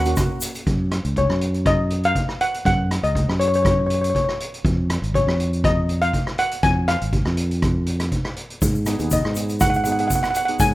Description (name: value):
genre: calypso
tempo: 121 BPM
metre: 4/4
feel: swing 53% on 16ths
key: F# major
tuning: A4 = 440 Hz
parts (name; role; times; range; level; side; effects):
- modern bright fingered electric bass; bass; 0.0-10.7 s; G#1 to G#2; -22 LUFS; equal; none
- steel pan; accompaniment; 0.1-0.6, 8.9-10.7 s; A#3 to G#4; -28 LUFS; right 2 dB; none
- street-band drum kit; drums; 0.1-10.7 s; hi-hat, kick drum, rim click; -23 LUFS; equal; none
- egg shaker; percussion; 0.1-0.6, 8.6-10.7 s; none; -31 LUFS; left 2 dB; none
- steel pan; melody; 1.2-10.7 s; C#5 to G#5; -21 LUFS; left 1 dB; none
room: small room ambience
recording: rough home demo mix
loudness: -18 LUFS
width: side -17 dB against mid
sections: 0.7-10.7 A section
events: none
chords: 0.0 F#; 0.7 F#5; 4.6 N.C.; 8.6 G#m7